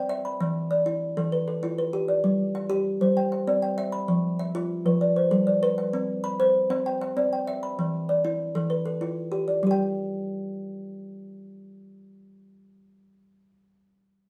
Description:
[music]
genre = southern african traditional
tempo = 130 BPM (dotted quarters)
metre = 12/8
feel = straight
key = G mixolydian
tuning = A4 = 439 Hz
[part]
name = kalimba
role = solo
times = 0.0-13.5 s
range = E3 to B5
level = -26 LUFS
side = equal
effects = none
[sound]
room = moderate studio reverb, RT60 0.6 s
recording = band playing live in one room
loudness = -26 LUFS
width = mono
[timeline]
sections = 0.0-9.6 A section; 9.6-13.3 B section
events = none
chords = 0.4 Em; 2.3 G5; 3.2 C; 4.1 E5; 5.0 G; 5.9 C; 7.8 Em; 9.6 G5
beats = | 0.41 0.87 1.33 1.79 | 2.25 2.71 3.17 3.63 | 4.10 4.56 5.02 5.48 | 5.94 6.40 6.87 7.33 | 7.79 8.25 8.71 9.17 | 9.63 10.09 10.55 11.01 | 11.47 11.93 12.38 12.84

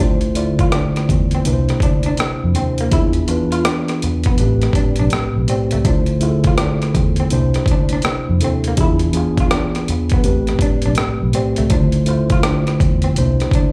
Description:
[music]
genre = R&B, neo-soul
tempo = 82 BPM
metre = 4/4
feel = swing 64% on 16ths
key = D dorian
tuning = A4 = 437 Hz
[part]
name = electric guitar through a small old amp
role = second line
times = 0.0-13.7 s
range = A3 to F4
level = -27 LUFS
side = equal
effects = lush chorus, slapback echo
[part]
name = mellow tine electric piano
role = accompaniment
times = 0.0-13.7 s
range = A2 to D5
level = -21 LUFS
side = equal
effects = none
[part]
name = vintage muted fingered electric bass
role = bass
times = 0.0-13.7 s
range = A1 to F2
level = -21 LUFS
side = equal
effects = none
[part]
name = boom bap sampler-style drum kit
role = drums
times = 0.2-13.7 s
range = hi-hat, kick drum, rim click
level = -21 LUFS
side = equal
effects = overdrive
[sound]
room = light reverb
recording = live gig heard through the venue's PA, club reverb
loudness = -17 LUFS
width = mono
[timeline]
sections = 0.0-13.7 A section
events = none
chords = 0.0 Dm9; 1.5 C9; 2.9 E7b9; 4.4 Am9; 5.8 Dm9; 7.3 C9; 8.8 E7b9; 10.2 Am9; 11.7 Dm9; 13.2 C9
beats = 0.72 1.46 2.19 | 2.92 3.65 4.38 5.12 | 5.85 6.58 7.31 8.04 | 8.77 9.51 10.24 10.97 | 11.70 12.43 13.16

